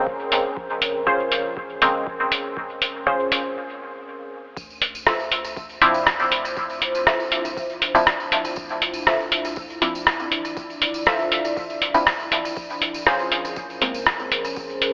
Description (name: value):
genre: dub techno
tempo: 120 BPM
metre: 4/4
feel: straight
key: unclear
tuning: A4 = 442 Hz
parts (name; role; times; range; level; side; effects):
- deep dark ambient pad; sustained chords; 0.0-14.9 s; Db4 to D5; -32 LUFS; equal; chorus, built-in reverb, sidechain pumping
- filtered dub chord stab; stabs; 0.0-2.1, 5.8-14.1 s; Db3 to E4; -26 LUFS; equal; chorus, phaser, sidechain pumping, dub echo
- electronic kick drum; drums; 0.1-14.7 s; none; -40 LUFS; equal; none
- lo-fi sampler-style drum kit; drums; 0.3-14.9 s; hi-hat, rim click; -23 LUFS; equal; none
- soft dub sub bass; bass; 0.6-14.9 s; F1 to F2; -50 LUFS; equal; sidechain pumping
- warbly dusty pluck; riff; 1.1-13.1 s; Db4 to E5; -28 LUFS; equal; chorus, sidechain pumping, dub echo
- tambourine; percussion; 4.6-14.8 s; none; -39 LUFS; equal; none
room: moderate huge ambient reverb, RT60 5.2 s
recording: telephone sound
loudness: -22 LUFS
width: mono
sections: 0.0-4.6 A section; 4.6-14.9 A section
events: break 3.6-4.6; filter sweep on synth stab 4.6-14.9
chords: 0.0 Bbm9; 4.6 Dm9; 12.6 Bbm9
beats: 0.07 | 0.57 1.07 1.57 2.07 | 2.57 3.07 3.57 4.07 | 4.57 5.07 5.57 6.07 | 6.57 7.07 7.57 8.07 | 8.57 9.07 9.57 10.07 | 10.57 11.07 11.57 12.07 | 12.57 13.07 13.57 14.07 | 14.57